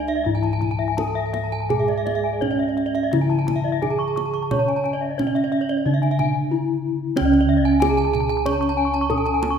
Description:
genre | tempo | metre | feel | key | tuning
Balinese gamelan | 83-93 BPM | 4/4 | straight | C# pelog | A4 = 442 Hz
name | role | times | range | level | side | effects
gamelan-type bronze metallophone | melody | 0.0-9.6 s | C#4 to C#5 | -22 LUFS | right 2 dB | none
gamelan-type bronze metallophone | accompaniment | 0.0-9.6 s | C#3 to C#4 | -31 LUFS | equal | none
gamelan-type bronze metallophone | arpeggios | 0.0-9.5 s | C#5 to C#6 | -29 LUFS | right 5 dB | none
gamelan-type bossed gongs | bass | 0.0-9.6 s | C#2 to C#5 | -24 LUFS | left 2 dB | none
kendang | percussion | 0.1-9.6 s | none | -31 LUFS | right 1 dB | none
gamelan-type bronze metallophone | arpeggios | 0.2-9.6 s | C#5 to C#6 | -27 LUFS | left 7 dB | none
room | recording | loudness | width
moderate scoring stage reverb, RT60 1.6 s | minimal, uncompressed stereo recording | -19 LUFS | side -7 dB against mid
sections
0.0-7.2 A section; 7.2-9.6 B section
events
break 6.2-7.2; drum fill 6.7-7.2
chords
none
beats
0.26 0.98 | 1.70 2.42 3.13 3.82 | 4.51 5.19 5.86 6.51 | 7.16 7.81 8.46 9.10

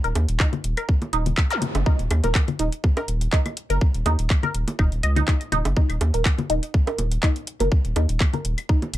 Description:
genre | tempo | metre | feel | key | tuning
minimal techno | 123 BPM | 4/4 | swing 54% on 16ths | Eb minor | A4 = 440 Hz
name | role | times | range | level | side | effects
resonant blip pluck | riff | 0.0-8.8 s | Eb4 to Eb5 | -27 LUFS | equal | phaser, sidechain pumping, tape echo
saturated sub bass | bass | 0.0-9.0 s | Eb1 to Eb2 | -22 LUFS | equal | sidechain pumping
booming analog drum machine | drums | 0.0-9.0 s | handclaps, hi-hat | -28 LUFS | equal | none
bongos, congas and claves | percussion | 0.2-8.9 s | none | -30 LUFS | left 2 dB | tape echo
electronic kick drum | drums | 0.4-8.8 s | none | -20 LUFS | equal | none
zap | sound effects | 1.5-1.6 s | none | -31 LUFS | equal | none
room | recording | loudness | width
little or no reverb | dark, warm production | -20 LUFS | side -14 dB against mid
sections
0.0-9.0 A section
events
none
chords
none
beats
0.40 0.89 1.38 | 1.86 2.35 2.84 3.33 | 3.81 4.30 4.79 5.28 | 5.76 6.25 6.74 7.23 | 7.72 8.20 8.69

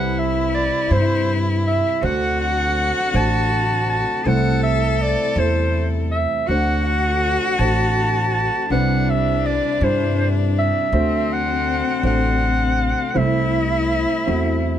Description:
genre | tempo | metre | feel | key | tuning
acoustic folk-pop ballad | 54 BPM (dotted quarters) | 6/8 | straight | unclear | A4 = 440 Hz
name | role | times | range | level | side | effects
bright clarinet | melody | 0.0-14.8 s | C5 to A5 | -22 LUFS | right 1 dB | none
rich cello | second line | 0.0-14.8 s | C4 to A4 | -23 LUFS | left 4 dB | none
dark grand piano | accompaniment | 0.0-14.8 s | C2 to E5 | -24 LUFS | right 2 dB | none
dark chamber string section | sustained chords | 0.0-14.8 s | C3 to E4 | -33 LUFS | left 2 dB | none
upright bass | bass | 0.0-14.8 s | A1 to G2 | -22 LUFS | equal | none
room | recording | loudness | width
little or no reverb | none | -17 LUFS | side -10 dB against mid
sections
0.0-14.8 A section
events
none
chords
0.0 Cmaj7; 2.0 D7; 4.3 Am/C; 6.5 D7; 8.7 Cmaj7; 10.9 D7; 13.2 Am/C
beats
0.92 | 2.03 3.14 | 4.25 5.37 | 6.48 7.60 | 8.71 9.82 | 10.93 12.04 | 13.16 14.27

